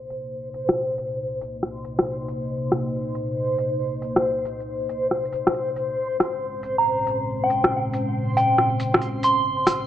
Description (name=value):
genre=future garage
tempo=138 BPM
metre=4/4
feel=swing 66% on 16ths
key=C phrygian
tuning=A4 = 438 Hz
part: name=dark analog pad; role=sustained chords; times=0.0-9.9 s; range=Bb2 to Eb5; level=-29 LUFS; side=equal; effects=chorus, phaser
part: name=backwards swelling texture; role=texture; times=0.0-9.9 s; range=C5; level=-27 LUFS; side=left 1 dB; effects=built-in reverb
part: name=deep house drum kit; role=drums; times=0.1-9.8 s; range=hi-hat, rim click, shaker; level=-22 LUFS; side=equal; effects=studio reverb
part: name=soft synth bell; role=melody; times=6.8-9.6 s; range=G5 to C6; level=-22 LUFS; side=right 1 dB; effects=chorus, phaser, analog delay
room=moderate lush hall reverb, RT60 2.1 s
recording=dry, gritty hardware recording, vinyl crackle, low-pass filter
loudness=-21 LUFS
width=side -11 dB against mid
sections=0.0-9.9 A section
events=filter sweep on analog synth pad 0.0-9.9; filter sweep 0.0-9.9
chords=0.0 Cm7; 6.0 Bbm9